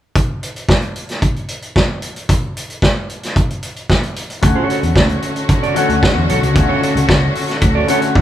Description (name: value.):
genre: disco.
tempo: 112 BPM.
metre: 4/4.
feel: straight.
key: unclear.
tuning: A4 = 440 Hz.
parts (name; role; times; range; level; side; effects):
vintage drum kit; drums; 0.2-8.2 s; hi-hat, kick drum, snare drum, toms; -16 LUFS; equal; none.
clean electric guitar; accompaniment; 4.4-8.2 s; F#4 to D5; -21 LUFS; right 5 dB; none.
clear concert grand piano; accompaniment; 4.4-8.2 s; D3 to F#4; -19 LUFS; left 3 dB; none.
clear symphonic string section; sustained chords; 4.4-8.2 s; D3 to F#4; -21 LUFS; left 1 dB; none.
picked electric bass; bass; 4.4-8.2 s; B1 to D3; -19 LUFS; equal; none.
room: moderate large studio reverb, RT60 1.3 s.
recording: band playing live in one room.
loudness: -13 LUFS.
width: side -12 dB against mid.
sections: 0.2-8.2 A section.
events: none.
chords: 0.2 N.C.; 4.4 Dmaj7.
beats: | 0.16 0.69 1.22 1.76 | 2.29 2.83 3.36 3.89 | 4.42 4.96 5.49 6.02 | 6.56 7.09 7.62 8.15.